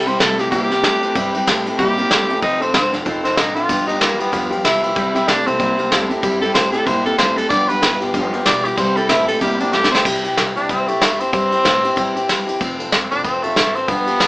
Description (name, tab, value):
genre	rockabilly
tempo	189 BPM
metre	4/4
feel	swing 59% on 8ths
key	C major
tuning	A4 = 440 Hz
part	bright tenor saxophone	melody	0.0-14.3 s	A3 to D5	-18 LUFS	equal	none
part	picked steel-string acoustic guitar	accompaniment	0.0-14.3 s	G2 to A4	-22 LUFS	left 1 dB	none
part	electric guitar through a small old amp	riff	0.0-10.0 s	F2 to Bb3	-23 LUFS	right 1 dB	none
part	upright bass	bass	0.0-14.3 s	F1 to A2	-32 LUFS	equal	none
part	vintage brush drum kit	drums	0.1-14.3 s	crash cymbal, kick drum, ride cymbal, snare drum	-19 LUFS	equal	none
room	light reverb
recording	band playing live in one room, small speaker sound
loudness	-14 LUFS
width	side -21 dB against mid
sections	0.0-10.0 A section; 10.0-14.3 B section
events	tenor saxophone solo 0.0-10.0; drum fill 9.7-10.0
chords	0.0 C; 2.4 F; 3.7 G7; 5.0 C; 7.5 G7; 8.8 C; 12.6 F